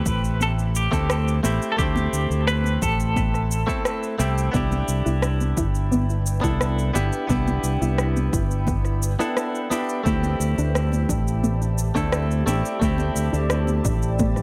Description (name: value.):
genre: sunset chillout.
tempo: 87 BPM.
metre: 4/4.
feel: straight.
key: unclear.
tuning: A4 = 442 Hz.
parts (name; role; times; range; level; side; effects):
clean electric guitar; melody; 0.0-3.8 s; G4 to B4; -30 LUFS; equal; tremolo, analog delay, shimmer reverb.
direct-recorded clean electric guitar; accompaniment; 0.0-14.4 s; A3 to A4; -30 LUFS; equal; vintage 12-bit sampler grit, analog delay, shimmer reverb.
fingered electric bass; bass; 0.1-14.4 s; G1 to D2; -25 LUFS; equal; none.
electronic kick drum; drums; 0.1-14.3 s; none; -29 LUFS; equal; overdrive.
electronic shaker and rim click; drums; 0.1-14.4 s; none; -32 LUFS; equal; overdrive.
congas; percussion; 0.4-14.4 s; none; -34 LUFS; equal; none.
shimmering ambient pad; sustained chords; 5.2-14.4 s; E4 to A5; -37 LUFS; equal; chorus, built-in reverb, phaser, shimmer reverb.
soft round pluck; arpeggios; 4.5-14.4 s; A3 to E4; -32 LUFS; equal; chorus, analog delay, shimmer reverb.
room: light reverb.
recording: echo-heavy mix.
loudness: -22 LUFS.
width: mono.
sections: 0.0-14.4 A section.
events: none.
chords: 0.0 D7sus4; 4.5 Cmaj7; 10.1 D7sus4.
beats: 0.40 1.09 | 1.78 2.47 3.16 3.85 | 4.54 5.23 5.92 6.61 | 7.30 7.99 8.68 9.37 | 10.06 10.75 11.44 12.12 | 12.81 13.51 14.19.